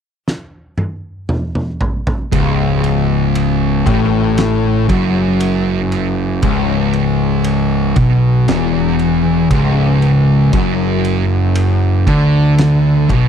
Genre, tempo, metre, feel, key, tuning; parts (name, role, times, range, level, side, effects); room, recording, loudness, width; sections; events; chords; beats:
stoner and doom metal; 58 BPM; 4/4; straight; C# phrygian; A4 = 440 Hz
oversized low-tuned drum kit; drums; 0.3-13.3 s; kick drum, ride cymbal, snare drum, toms; -19 LUFS; right 1 dB
fuzz guitar; riff; 2.3-13.3 s; C#2 to D3; -15 LUFS; left 7 dB; distortion
thick fuzz guitar; riff; 2.3-13.3 s; C#2 to D3; -16 LUFS; right 9 dB; distortion
fuzz picked electric bass; bass; 2.3-13.3 s; C#1 to D2; -19 LUFS; right 1 dB; overdrive
little or no reverb; dry, close 1970s-style studio recording; -12 LUFS; side -8 dB against mid
0.0-2.3 A section; 2.3-13.3 B section
drum fill 0.3-2.3
0.0 N.C.; 2.3 C#m; 10.5 F#sus4
0.26 1.29 | 2.32 3.35 4.38 5.41 | 6.43 7.46 8.48 9.51 | 10.53 11.56 12.59